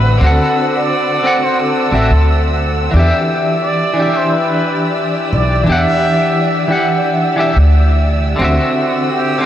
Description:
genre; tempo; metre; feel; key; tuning
trip hop; 88 BPM; 4/4; swing 57% on 16ths; E minor; A4 = 440 Hz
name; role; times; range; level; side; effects
trumpet with plunger mute; melody; 0.0-9.5 s; G4 to E5; -19 LUFS; right 1 dB; vintage 12-bit sampler grit, tape echo
clean electric guitar; accompaniment; 0.0-9.5 s; D3 to F#5; -15 LUFS; equal; harmonic tremolo, tape echo
warm studio violin section; sustained chords; 0.0-9.5 s; C4 to E6; -22 LUFS; equal; vintage 12-bit sampler grit
upright bass; bass; 0.0-8.6 s; A1 to E2; -12 LUFS; equal; none
room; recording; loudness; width
wet huge ambient reverb, RT60 7.9 s; dreamy mix soaked in reverb; -11 LUFS; side -11 dB against mid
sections
0.0-9.5 A section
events
none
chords
0.0 D9; 2.9 Em7; 8.4 D9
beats
| 0.21 0.90 1.58 2.26 | 2.94 3.62 4.30 4.99 | 5.67 6.35 7.03 7.71 | 8.40 9.08

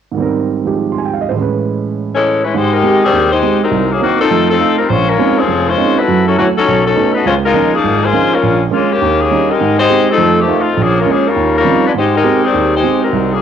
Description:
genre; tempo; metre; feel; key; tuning
jazz; 204 BPM; 4/4; swing 62% on 8ths; Ab major; A4 = 439 Hz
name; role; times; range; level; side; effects
warm baby grand piano; accompaniment; 0.1-13.4 s; F1 to C6; -15 LUFS; right 6 dB; cassette tape, plate reverb
clear saxophone section; melody; 2.1-13.4 s; Eb3 to C5; -12 LUFS; left 5 dB; cassette tape, plate reverb
room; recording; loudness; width
wet studio reverb, RT60 0.6 s; home recording on cassette; -10 LUFS; side -8 dB against mid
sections
0.2-2.5 A section; 2.5-12.0 B section; 12.0-13.4 B section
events
none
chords
0.2 Abmaj7; 1.4 Amaj7; 2.5 Abmaj7; 3.7 Cm7b5; 4.3 F7; 4.9 Bbm11; 6.1 Gbm7; 6.7 B9; 7.2 Db69; 8.4 Bbm7; 9.0 Eb7; 9.6 Abmaj7; 10.2 F7; 10.8 Bbm7; 11.4 Eb13; 12.0 Abmaj7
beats
| 0.18 0.47 0.77 1.06 | 1.36 1.65 1.95 2.24 | 2.54 2.83 3.12 3.42 | 3.71 4.01 4.30 4.59 | 4.89 5.18 5.48 5.77 | 6.07 6.36 6.66 6.95 | 7.24 7.54 7.83 8.13 | 8.42 8.71 9.01 9.30 | 9.60 9.89 10.19 10.48 | 10.78 11.07 11.36 11.66 | 11.95 12.25 12.54 12.84 | 13.13

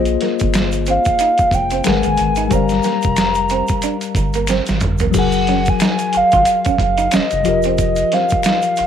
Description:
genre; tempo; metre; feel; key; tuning
R&B, neo-soul; 91 BPM; 4/4; swing 57% on 16ths; unclear; A4 = 442 Hz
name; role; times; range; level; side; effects
tine electric piano; accompaniment; 0.0-8.9 s; F3 to Ab5; -20 LUFS; left 13 dB; medium stereo tremolo
rubbery square bass; bass; 0.0-8.9 s; F1 to Bb1; -21 LUFS; right 1 dB; none
dusty soul sampler-style drum kit; drums; 0.1-8.9 s; crash cymbal, hi-hat, kick drum, snare drum, toms; -20 LUFS; right 1 dB; overdrive
tube shaker and finger snaps; percussion; 0.1-8.9 s; none; -31 LUFS; left 1 dB; none
electric guitar through a small old amp; second line; 0.2-8.8 s; Bb3 to F4; -25 LUFS; right 11 dB; none
hollow clarinet-like synth lead; melody; 0.9-8.9 s; Eb5 to Bb5; -17 LUFS; right 1 dB; chorus, phaser
room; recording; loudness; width
moderate spring reverb, RT60 2.1 s; 1960s-style stereo with parts hard left and right; -14 LUFS; side -9 dB against mid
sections
0.0-5.1 A section; 5.1-8.9 B section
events
drum fill 4.5-5.1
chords
0.0 Bb9sus4; 1.9 Abm7; 2.5 Gm7; 5.1 Gbmaj9; 7.5 F7sus4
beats
0.53 1.19 1.85 | 2.51 3.17 3.83 4.49 | 5.15 5.81 6.47 7.13 | 7.79 8.45

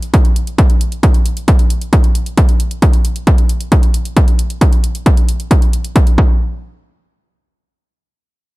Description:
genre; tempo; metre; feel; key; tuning
uplifting trance; 134 BPM; 4/4; straight; none; none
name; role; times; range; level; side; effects
electronic hi-hat; drums; 0.0-6.2 s; none; -28 LUFS; right 1 dB; sidechain pumping on hats
electronic kick drum; drums; 0.1-6.3 s; none; -10 LUFS; equal; overdrive
room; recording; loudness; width
little or no reverb; dark, warm production; -10 LUFS; side -20 dB against mid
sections
0.0-6.4 A section; 6.4-8.6 B section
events
none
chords
none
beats
0.14 0.58 | 1.03 1.48 1.93 2.37 | 2.82 3.27 3.72 4.17 | 4.61 5.06 5.51 5.96

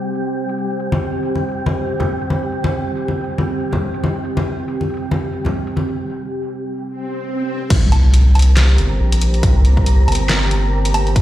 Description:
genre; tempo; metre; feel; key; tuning
deep dubstep; 139 BPM; 4/4; swing 58% on 16ths, half-time; unclear; A4 = 441 Hz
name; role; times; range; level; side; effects
dark analog pad; sustained chords; 0.0-11.2 s; C4 to G4; -24 LUFS; right 2 dB; chorus
wind-like tuned noise texture; texture; 0.0-11.2 s; G3 to Bb4; -27 LUFS; equal; built-in reverb
dubstep drum kit; drums; 0.2-11.2 s; crash cymbal, handclaps, hi-hat, snare drum, woodblock; -22 LUFS; equal; low-pass filter on hats, low-pass filter on cymbals, low-pass filter on perc, low-pass filter on snare, low-pass filter on room
congas; percussion; 0.9-5.9 s; none; -21 LUFS; left 1 dB; none
swell and impact; sound effects; 7.0-9.4 s; none; -22 LUFS; equal; none
saturated sub bass; bass; 7.7-11.2 s; G1 to C2; -13 LUFS; equal; none
electronic kick drum; drums; 7.7-11.2 s; none; -15 LUFS; equal; none
room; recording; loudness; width
light reverb; played on a big sound system in a bare room, stone room reverb; -15 LUFS; side -13 dB against mid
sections
0.0-7.7 A section; 7.7-11.2 B section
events
break 6.0-7.7; swell 7.0-7.7; drop 7.7-11.2; impact 7.7-9.4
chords
0.0 C5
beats
0.37 | 0.80 1.23 1.66 2.09 | 2.52 2.96 3.39 3.82 | 4.25 4.68 5.11 5.55 | 5.98 6.41 6.84 7.27 | 7.70 8.14 8.57 9.00 | 9.43 9.86 10.29 10.73 | 11.16

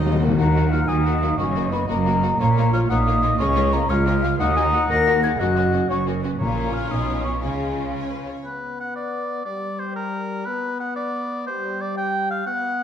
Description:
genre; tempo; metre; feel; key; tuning
cinematic; 119 BPM (dotted quarters); 6/8; straight; Eb minor; A4 = 438 Hz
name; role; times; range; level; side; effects
rich symphonic violin section; melody; 0.0-8.4 s; Bb4 to D#5; -39 LUFS; left 4 dB; none
clear oboe; second line; 0.0-0.2, 8.4-12.8 s; D#4 to G5; -26 LUFS; right 1 dB; none
mellow clarinet; second line; 0.0-8.2 s; D#4 to Ab5; -30 LUFS; left 3 dB; none
warm symphonic violin section; second line; 0.0-8.3 s; A#3 to F#4; -34 LUFS; left 3 dB; none
rich studio viola section; accompaniment; 0.0-8.3 s; D#3 to Eb4; -32 LUFS; right 1 dB; none
warm French horn section; sustained chords; 0.0-12.8 s; G3 to Bb4; -27 LUFS; left 3 dB; none
rich symphonic cello section; bass; 0.0-8.3 s; Db2 to Eb3; -25 LUFS; right 2 dB; none
rich symphonic double bass section; bass; 0.0-8.3 s; Gb1 to D#2; -25 LUFS; right 3 dB; none
timpani; percussion; 0.0-0.3, 6.4-6.9 s; Bb2 to D#3; -23 LUFS; left 2 dB; none
mellow hollow concert flute; second line; 0.4-12.8 s; Bb4 to Bb6; -26 LUFS; left 2 dB; none
room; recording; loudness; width
wet scoring stage reverb, RT60 1.6 s; none; -19 LUFS; side -9 dB against mid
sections
0.4-8.4 A section; 8.4-12.8 B section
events
timpani fill 0.0-0.4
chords
0.4 Ebm; 1.4 Gb; 2.4 Bbm; 3.4 Db; 4.4 Ebm; 5.4 Gb; 6.4 Bbm; 7.4 Db; 8.4 N.C.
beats
| 0.38 0.89 | 1.39 1.89 | 2.40 2.90 | 3.40 3.90 | 4.40 4.90 | 5.40 5.89 | 6.40 6.90 | 7.42 7.93 | 8.45 8.96 | 9.46 9.96 | 10.46 10.96 | 11.47 11.97 | 12.47

